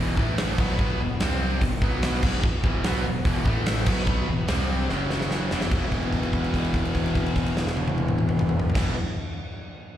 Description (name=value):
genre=hard rock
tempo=146 BPM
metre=4/4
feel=straight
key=E minor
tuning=A4 = 440 Hz
part: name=brassy analog pad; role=sustained chords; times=0.0-8.9 s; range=E3 to F#5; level=-38 LUFS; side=equal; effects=none
part: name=cranked stack guitar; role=riff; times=0.0-8.9 s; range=E2 to C4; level=-30 LUFS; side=left 8 dB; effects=overdrive, slapback echo
part: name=distorted electric guitar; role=riff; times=0.0-9.0 s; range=E2 to C4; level=-32 LUFS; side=right 10 dB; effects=overdrive, slapback echo
part: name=fuzz picked electric bass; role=bass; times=0.0-8.9 s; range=E1 to C2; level=-28 LUFS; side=equal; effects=overdrive
part: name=huge arena drum kit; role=drums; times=0.2-8.9 s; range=crash cymbal, hi-hat, kick drum, snare drum, toms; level=-26 LUFS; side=equal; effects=none
room=light reverb, small room ambience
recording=live gig heard through the venue's PA, recital hall reverb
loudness=-22 LUFS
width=side -11 dB against mid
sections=0.0-5.7 A section; 5.7-9.0 B section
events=drum fill 4.9-5.7; held note 5.7-8.8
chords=0.2 A5; 0.6 B5; 1.0 E5; 1.2 C5; 1.6 E5; 1.8 B5; 2.2 E5; 3.5 A5; 3.9 B5; 4.3 E5; 4.5 C5; 4.9 F#5; 5.5 E5